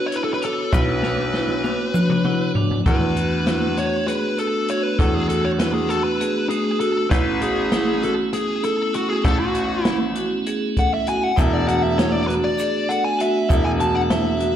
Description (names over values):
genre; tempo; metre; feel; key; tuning
progressive instrumental, band music in an uneven meter; 197 BPM (eighths); 7/8; straight; unclear; A4 = 440 Hz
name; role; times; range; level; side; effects
fuzz lead guitar; melody; 0.0-14.6 s; F#4 to A5; -23 LUFS; left 2 dB; distortion, slapback echo
tonewheel organ; accompaniment; 0.0-14.6 s; A3 to F#5; -25 LUFS; right 1 dB; slow rotary speaker, slapback echo
vibraphone with hard mallets; arpeggios; 0.1-14.6 s; A3 to A4; -26 LUFS; right 4 dB; slapback echo
open jazz drum kit; drums; 0.1-14.5 s; hi-hat, kick drum, snare drum, toms; -22 LUFS; equal; none
bright baby grand piano; bass; 0.7-14.5 s; E1 to E2; -24 LUFS; left 1 dB; none
egg shaker; percussion; 0.7-2.2, 11.4-14.3 s; none; -45 LUFS; right 3 dB; none
room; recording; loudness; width
moderate club reverb, RT60 0.5 s; live gig heard through the venue's PA, recital hall reverb; -18 LUFS; side -10 dB against mid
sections
0.0-2.9 A section; 2.9-14.6 B section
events
drum fill 1.0-2.9; tonewheel organ fill 1.9-2.9; lead electric guitar solo 2.9-14.6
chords
0.0 Bmadd9; 2.9 E7sus4; 7.1 Amaj7; 11.4 E7sus4